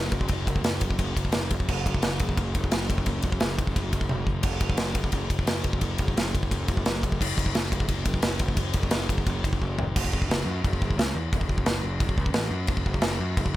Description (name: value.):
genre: heavy metal.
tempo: 174 BPM.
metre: 4/4.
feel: straight.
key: unclear.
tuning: A4 = 436 Hz.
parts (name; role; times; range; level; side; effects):
fuzz picked electric bass; bass; 0.0-13.6 s; E1 to F#2; -28 LUFS; equal; overdrive.
big rock drum kit; drums; 0.1-13.5 s; crash cymbal, kick drum, ride cymbal, snare drum, toms; -25 LUFS; equal; none.
room: little or no reverb.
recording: none.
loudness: -24 LUFS.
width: side -15 dB against mid.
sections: 0.0-9.9 A section; 9.9-13.6 B section.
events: drum fill 4.1-4.4, 9.6-9.9.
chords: none.